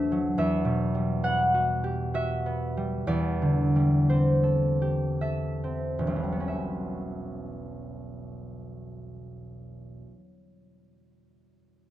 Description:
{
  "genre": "classical, solo harp piece",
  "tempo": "45-73 BPM",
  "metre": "3/4",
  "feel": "rubato",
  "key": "E minor",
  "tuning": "A4 = 436 Hz",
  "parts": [
    { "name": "concert harp", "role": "solo", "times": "0.0-10.5 s", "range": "E1 to F#5", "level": "-25 LUFS", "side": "equal", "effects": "none" }
  ],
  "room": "light reverb",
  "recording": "close, detailed microphones",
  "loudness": "-24 LUFS",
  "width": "side -13 dB against mid",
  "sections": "0.0-6.5 A section; 6.5-10.1 B section",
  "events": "slowing down 0.0-6.5",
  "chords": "0.4 Emadd9; 3.1 D9sus4/E; 6.5 Em6"
}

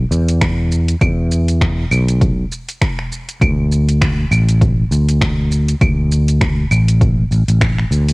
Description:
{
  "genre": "organic downtempo",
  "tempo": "100 BPM",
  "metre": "4/4",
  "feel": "swing 57% on 16ths",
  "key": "unclear",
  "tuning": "A4 = 442 Hz",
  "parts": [
    { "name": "sustaining fretless electric bass", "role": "bass", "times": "0.0-8.1 s", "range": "A1 to E2", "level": "-14 LUFS", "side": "equal", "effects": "sidechain pumping" },
    { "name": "deep house drum kit", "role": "drums", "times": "0.1-8.1 s", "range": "claves, finger snaps, hi-hat, shaker", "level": "-23 LUFS", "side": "right 1 dB", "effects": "overdrive, cassette tape" },
    { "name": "electronic kick drum", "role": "drums", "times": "0.4-7.8 s", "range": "none", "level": "-18 LUFS", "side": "equal", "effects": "overdrive, cassette tape" }
  ],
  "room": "little or no reverb",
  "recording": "home recording on cassette",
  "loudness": "-12 LUFS",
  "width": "side -28 dB against mid",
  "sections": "0.0-8.1 A section",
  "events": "none",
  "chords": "none"
}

